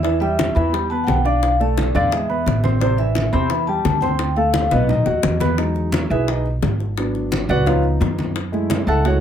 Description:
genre	Afro-Cuban jazz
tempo	173 BPM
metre	4/4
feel	straight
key	E major from 5.6 s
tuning	A4 = 439 Hz
part	vibraphone with soft mallets	melody	0.0-5.4 s	D5 to B5	-22 LUFS	left 3 dB	none
part	dark concert grand piano	accompaniment	0.0-9.2 s	B2 to D6	-21 LUFS	right 1 dB	none
part	upright bass	bass	0.0-9.2 s	G#1 to F#2	-21 LUFS	right 1 dB	none
part	bongos	percussion	0.0-9.2 s	none	-27 LUFS	left 5 dB	none
part	congas	percussion	0.0-9.2 s	none	-26 LUFS	equal	none
room	light reverb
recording	none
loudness	-16 LUFS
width	side -9 dB against mid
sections	0.0-5.6 A section; 5.6-9.2 B section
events	drum fill 4.7-5.6; grand piano solo 5.6-9.2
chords	0.0 Em7; 1.4 Bm7b5; 2.1 E; 2.8 Am7; 4.2 Dm7; 4.9 B; 5.6 Emaj7; 7.0 G#m7b5; 7.7 C#7; 8.4 F#m7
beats	| 0.04 0.39 0.74 1.08 | 1.43 1.78 2.12 2.47 | 2.81 3.16 3.51 3.85 | 4.20 4.55 4.89 5.24 | 5.59 5.93 6.28 6.63 | 6.97 7.32 7.67 8.01 | 8.36 8.71 9.05

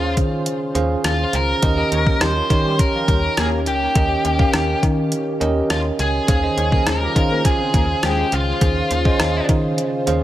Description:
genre	1980s-style pop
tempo	103 BPM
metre	4/4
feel	straight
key	unclear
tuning	A4 = 440 Hz
part	octave-fuzz lead guitar	melody	0.0-9.5 s	F4 to C5	-22 LUFS	equal	distortion, digital delay
part	bell-like tine electric piano	accompaniment	0.0-10.2 s	Eb3 to F5	-22 LUFS	right 2 dB	fast stereo tremolo
part	phased analog pad	sustained chords	0.0-10.2 s	Db3 to C5	-29 LUFS	left 1 dB	phaser, chorus
part	slap-like FM bass	bass	0.0-10.2 s	Db2 to Eb3	-22 LUFS	equal	none
part	gated 80s digital drum machine	drums	0.2-10.2 s	hi-hat, kick drum, rim click	-19 LUFS	equal	overdrive
part	analog synth brass	stabs	1.9-8.3 s	F3 to Db5	-29 LUFS	left 3 dB	chorus, digital delay
room	light reverb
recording	none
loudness	-16 LUFS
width	side -13 dB against mid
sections	0.0-10.2 A section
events	none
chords	0.0 Dbmaj7; 1.6 Eb7; 6.3 Dbmaj7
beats	0.46 1.04 | 1.62 2.21 2.79 3.37 | 3.95 4.54 5.12 5.70 | 6.28 6.87 7.45 8.03 | 8.61 9.20 9.78

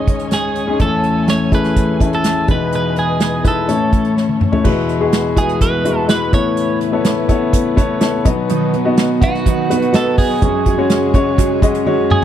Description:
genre	piano-driven pop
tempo	125 BPM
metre	4/4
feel	straight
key	unclear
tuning	A4 = 440 Hz
part	twelve-string electric guitar	melody	0.0-12.2 s	F#4 to D#5	-20 LUFS	right 3 dB	spring reverb
part	warm concert grand piano	accompaniment	0.0-12.2 s	A1 to F#5	-16 LUFS	left 4 dB	none
part	muted studio string section	sustained chords	0.0-12.2 s	C#3 to G#5	-26 LUFS	right 4 dB	none
part	unplugged drum kit	drums	0.1-12.2 s	crash cymbal, hi-hat, kick drum, snare drum, toms	-16 LUFS	right 1 dB	none
part	fingerpicked steel-string acoustic guitar	riff	8.5-12.2 s	B2 to B4	-19 LUFS	right 10 dB	none
room	small room ambience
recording	dry, close 1970s-style studio recording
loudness	-13 LUFS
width	side -10 dB against mid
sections	0.0-4.6 A section; 4.6-12.2 B section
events	drum fill 4.2-4.6, 11.9-12.2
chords	0.0 C#sus2; 0.8 Amaj7; 2.5 Emaj7; 3.7 A; 4.6 Eadd9; 6.3 Aadd9; 8.3 B; 10.4 F#sus2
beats	0.31 | 0.80 1.28 1.76 2.24 | 2.72 3.20 3.68 4.17 | 4.65 5.13 5.61 6.09 | 6.57 7.05 7.53 8.01 | 8.49 8.98 9.46 9.94 | 10.42 10.90 11.38 11.86

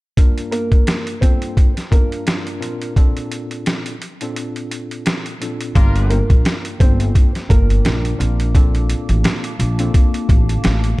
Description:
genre	hip hop, boom-bap hip-hop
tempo	86 BPM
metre	4/4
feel	swing 56% on 16ths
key	G minor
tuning	A4 = 437 Hz
part	tine electric piano	accompaniment	0.2-10.9 s	G2 to Bb4	-26 LUFS	equal	overdrive, fast stereo tremolo, high-pass filter, low-pass filter
part	boom bap sampler-style drum kit	drums	0.2-11.0 s	hi-hat, kick drum, snare drum	-15 LUFS	equal	none
part	dark upright piano	melody	0.5-8.5 s	Bb3 to C5	-26 LUFS	right 1 dB	high-pass filter, low-pass filter, digital delay
part	dark analog pad	sustained chords	6.8-11.0 s	Bb3 to D6	-31 LUFS	left 2 dB	chorus, phaser, high-pass filter, low-pass filter
part	warm horn section	stabs	5.8-6.2 s	F4 to Bb4	-30 LUFS	left 1 dB	high-pass filter, low-pass filter, digital delay
part	upright bass	bass	5.8-10.9 s	G1 to Bb1	-17 LUFS	equal	none
room	studio reverb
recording	dark, warm production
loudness	-14 LUFS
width	side -21 dB against mid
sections	0.2-5.8 A section; 5.8-11.0 B section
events	break 4.4-5.8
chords	0.2 Gm7; 2.6 Bbmaj7; 5.8 Gm7; 8.2 Bbmaj7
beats	| 0.17 0.87 1.57 2.27 | 2.96 3.66 4.36 5.06 | 5.75 6.45 7.15 7.85 | 8.54 9.24 9.94 10.64

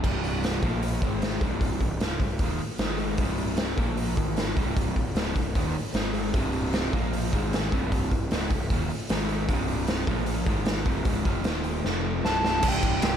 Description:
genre	hard rock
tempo	152 BPM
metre	4/4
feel	straight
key	C minor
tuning	A4 = 440 Hz
part	overdriven semi-hollow guitar	riff	0.0-13.2 s	C2 to Bb3	-29 LUFS	equal	none
part	fuzz picked electric bass	bass	0.0-13.2 s	C1 to Bb1	-31 LUFS	equal	overdrive
part	raw garage drum kit	drums	0.0-13.1 s	crash cymbal, hi-hat, kick drum, ride cymbal, snare drum	-27 LUFS	equal	none
part	nasal lead guitar with a parked wah	melody	12.3-13.2 s	G5 to A5	-26 LUFS	equal	overdrive, slapback echo
room	moderate recital hall reverb, RT60 1.4 s, small room ambience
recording	none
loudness	-24 LUFS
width	side -9 dB against mid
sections	0.0-12.6 A section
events	drum fill 11.8-12.6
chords	0.0 C5; 0.6 Bb5; 1.0 Ab5; 1.4 Cm; 2.8 Ab5; 3.2 C5; 3.8 Bb5; 4.2 Ab5; 4.6 Cm; 6.0 Ab5; 6.3 C5; 6.9 Bb5; 7.3 Ab5; 7.7 Cm; 9.1 Ab5; 9.5 C5; 10.1 Bb5; 10.5 Ab5; 10.9 C5; 11.5 Eb5; 11.8 F5; 12.2 C5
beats	| 0.03 0.43 0.82 1.22 | 1.61 2.01 2.40 2.80 | 3.19 3.59 3.98 4.38 | 4.77 5.17 5.56 5.95 | 6.35 6.74 7.13 7.53 | 7.92 8.31 8.71 9.10 | 9.49 9.88 10.28 10.67 | 11.06 11.45 11.84 12.24 | 12.63 13.02

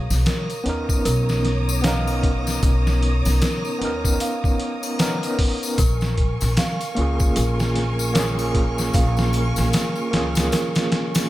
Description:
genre	trip hop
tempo	76 BPM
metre	4/4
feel	swing 60% on 16ths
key	Bb phrygian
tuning	A4 = 440 Hz
part	warm symphonic string section	sustained chords	0.0-11.3 s	Bb4 to D#6	-31 LUFS	right 1 dB	none
part	worn celesta	arpeggios	0.0-11.3 s	A#4 to F5	-30 LUFS	right 2 dB	tape echo
part	upright bass	bass	0.0-10.5 s	Bb1 to D#2	-22 LUFS	equal	none
part	trip hop sampler-style drum kit	drums	0.1-11.3 s	hi-hat, kick drum, snare drum	-22 LUFS	equal	studio reverb
part	tambourine and triangle	percussion	0.1-11.3 s	none	-33 LUFS	left 5 dB	none
part	overdriven tine electric piano	accompaniment	0.6-11.3 s	Bb3 to A#4	-26 LUFS	right 1 dB	medium tremolo, tape echo
room	studio reverb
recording	none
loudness	-18 LUFS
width	side -16 dB against mid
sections	0.0-11.3 A section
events	none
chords	0.0 Bmaj9; 5.8 Bbm7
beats	0.26 1.05 1.84 | 2.63 3.42 4.21 5.00 | 5.79 6.58 7.37 8.16 | 8.95 9.73 10.52

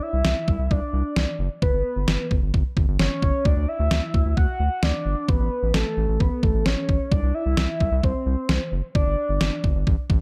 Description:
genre	synth-pop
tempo	131 BPM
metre	4/4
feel	straight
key	unclear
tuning	A4 = 440 Hz
part	soft octave-layered synth lead	melody	0.0-9.6 s	A4 to F#5	-29 LUFS	equal	chorus, phaser, digital delay
part	round analog bass	bass	0.1-10.2 s	F#1 to D2	-26 LUFS	equal	none
part	detuned 8-bit digital drum machine	drums	0.2-10.2 s	kick drum, snare drum	-25 LUFS	equal	none
room	light reverb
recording	dark, warm production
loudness	-23 LUFS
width	mono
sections	0.0-10.2 A section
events	none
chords	0.0 Cadd9; 1.6 G; 3.5 Dadd9; 5.3 A; 7.1 C; 8.9 G5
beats	0.25 0.71 1.16 | 1.62 2.08 2.54 3.00 | 3.45 3.91 4.37 4.83 | 5.29 5.74 6.20 6.66 | 7.12 7.58 8.03 8.49 | 8.95 9.41 9.87

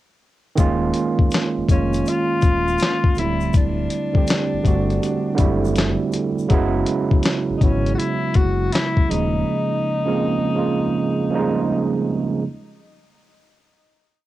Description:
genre	lo-fi hip hop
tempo	81 BPM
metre	4/4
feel	swing 65% on 16ths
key	unclear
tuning	A4 = 440 Hz
part	tine electric piano	accompaniment	0.6-12.5 s	Db3 to G4	-20 LUFS	right 4 dB	medium stereo tremolo, cassette tape, low-pass filter, plate reverb
part	sub bass with octave	bass	0.6-9.4 s	D1 to Ab1	-24 LUFS	left 2 dB	none
part	dusty soul sampler-style drum kit	drums	0.6-9.3 s	handclaps, hi-hat, kick drum, snare drum	-18 LUFS	left 2 dB	cassette tape
part	egg shaker	percussion	0.6-6.5 s	none	-45 LUFS	left 11 dB	none
part	breathy tenor saxophone	melody	1.7-12.1 s	Db4 to Gb4	-25 LUFS	left 3 dB	low-pass filter, plate reverb
room	light reverb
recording	home recording on cassette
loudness	-17 LUFS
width	side -15 dB against mid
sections	0.6-12.4 A section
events	none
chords	0.6 Eb9sus4; 3.2 D9sus4; 6.5 Gb9sus4; 9.1 Eb9sus4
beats	| 0.58 1.32 2.06 2.80 | 3.54 4.28 5.02 5.76 | 6.50 7.24 7.99 8.72 | 9.47 10.21 10.95 11.69

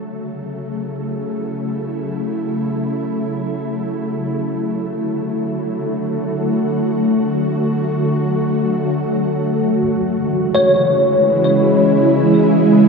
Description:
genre	ambient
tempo	free time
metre	none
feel	none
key	F# minor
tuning	A4 = 440 Hz
part	ethereal airy pad	sustained chords	0.0-12.9 s	C#3 to A4	-16 LUFS	equal	ensemble chorus, built-in reverb
part	bell-like tine electric piano	arpeggios	10.5-12.9 s	C#5	-15 LUFS	left 1 dB	ensemble chorus, ping-pong delay
room	wet lush hall reverb, RT60 2.8 s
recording	dreamy mix soaked in reverb, nothing above 7.9 kHz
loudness	-15 LUFS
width	side -4 dB against mid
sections	0.0-12.9 A section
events	fade-in on ambient pad 0.0-12.9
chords	0.0 F#m7; 4.3 D; 9.6 C#m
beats	free time

